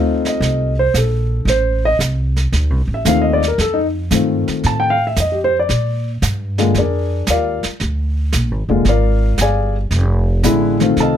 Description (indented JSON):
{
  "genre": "jazz piano trio",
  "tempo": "114 BPM",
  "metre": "4/4",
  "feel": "swing 69% on 8ths",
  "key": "F mixolydian",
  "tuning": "A4 = 440 Hz",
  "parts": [
    { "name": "dark baby grand piano", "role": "melody", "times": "0.0-11.2 s", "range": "D3 to A5", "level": "-16 LUFS", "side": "left 2 dB", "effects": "none" },
    { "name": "upright bass", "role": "bass", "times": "0.0-11.2 s", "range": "F1 to Bb2", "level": "-17 LUFS", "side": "right 1 dB", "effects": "none" },
    { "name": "jazz brush drum kit", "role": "drums", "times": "0.2-11.2 s", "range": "brushed snare drum, hi-hat, snare drum", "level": "-24 LUFS", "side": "right 4 dB", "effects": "none" }
  ],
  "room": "light reverb",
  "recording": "none",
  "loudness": "-14 LUFS",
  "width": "side -9 dB against mid",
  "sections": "0.0-11.2 A section",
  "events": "grand piano solo 0.0-11.2",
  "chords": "0.0 F7; 5.7 Bb7; 9.9 F7"
}